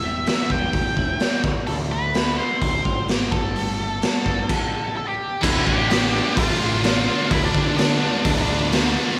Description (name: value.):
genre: quiet-loud alternative rock.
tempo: 128 BPM.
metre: 4/4.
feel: straight.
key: unclear.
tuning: A4 = 441 Hz.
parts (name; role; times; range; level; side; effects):
octave-fuzz lead guitar; melody; 0.0-8.7 s; D4 to A5; -28 LUFS; equal; distortion, slapback echo.
twelve-string electric guitar; arpeggios; 0.0-4.5 s; E2 to F4; -35 LUFS; equal; none.
growling picked electric bass; bass; 0.0-9.0 s; E1 to D3; -29 LUFS; equal; overdrive.
raw garage drum kit; drums; 0.3-8.8 s; crash cymbal, hi-hat, kick drum, snare drum; -24 LUFS; equal; none.
heavy high-gain guitar; riff; 5.4-9.2 s; D3 to F4; -29 LUFS; equal; distortion.
heavy high-gain guitar; riff; 5.4-9.2 s; D3 to D4; -31 LUFS; equal; none.
thick fuzz guitar; riff; 5.4-9.2 s; D3 to F4; -30 LUFS; equal; none.
room: light reverb, small room ambience.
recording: none.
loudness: -21 LUFS.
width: mono.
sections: 0.0-5.4 A section; 5.4-9.2 B section.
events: none.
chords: 0.0 Em; 1.4 Dm7; 3.3 Gsus2; 5.4 Dm.